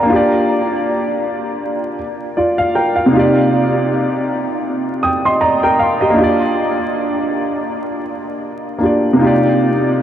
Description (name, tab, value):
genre	hip hop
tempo	79 BPM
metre	4/4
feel	swing 56% on 16ths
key	C minor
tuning	A4 = 440 Hz
part	warm upright piano	solo	0.0-10.0 s	C3 to Eb6	-13 LUFS	equal	cassette tape, low-pass filter, analog delay
room	wet huge ambient reverb, RT60 6.7 s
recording	dreamy mix soaked in reverb, vinyl crackle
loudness	-13 LUFS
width	side -10 dB against mid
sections	0.0-10.0 A section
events	none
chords	0.1 Gm7; 3.1 Cm11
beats	| 0.09 0.85 1.61 2.37 | 3.13 3.89 4.65 5.41 | 6.17 6.92 7.68 8.44 | 9.20 9.96